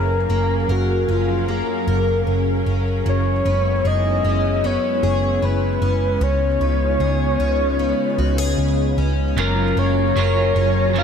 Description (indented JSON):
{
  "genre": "dream pop",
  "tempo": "76 BPM",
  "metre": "4/4",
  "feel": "straight",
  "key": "F# major",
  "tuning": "A4 = 438 Hz",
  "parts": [
    { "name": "soft octave-layered synth lead", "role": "melody", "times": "0.0-11.0 s", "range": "E#4 to E#5", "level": "-22 LUFS", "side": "left 2 dB", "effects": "chorus, ping-pong delay" },
    { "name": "soft string machine", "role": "sustained chords", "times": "0.0-11.0 s", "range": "C#3 to A#5", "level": "-25 LUFS", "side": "equal", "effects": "ensemble chorus" },
    { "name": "picked plugged-in twelve-string acoustic guitar", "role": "arpeggios", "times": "0.0-11.0 s", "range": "F#2 to A#4", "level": "-25 LUFS", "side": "left 3 dB", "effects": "analog chorus, ping-pong delay" },
    { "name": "vintage muted picked electric bass", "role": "bass", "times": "0.0-11.0 s", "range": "F#1 to C#2", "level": "-20 LUFS", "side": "right 1 dB", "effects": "none" },
    { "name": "electric guitar at the edge of break-up", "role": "accompaniment", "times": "9.4-11.0 s", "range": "F#2 to A#4", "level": "-24 LUFS", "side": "right 7 dB", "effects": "tremolo, analog chorus" }
  ],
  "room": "moderate lush hall reverb, RT60 1.7 s",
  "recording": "none",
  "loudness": "-17 LUFS",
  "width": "side -7 dB against mid",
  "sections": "0.0-9.4 A section; 9.4-11.0 B section",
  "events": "none",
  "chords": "0.0 F#maj7; 3.1 E6/F#; 6.2 C#7; 9.4 F#maj7",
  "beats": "0.69 1.48 2.27 | 3.06 3.85 4.64 5.43 | 6.22 7.01 7.80 8.59 | 9.38 10.16 10.95"
}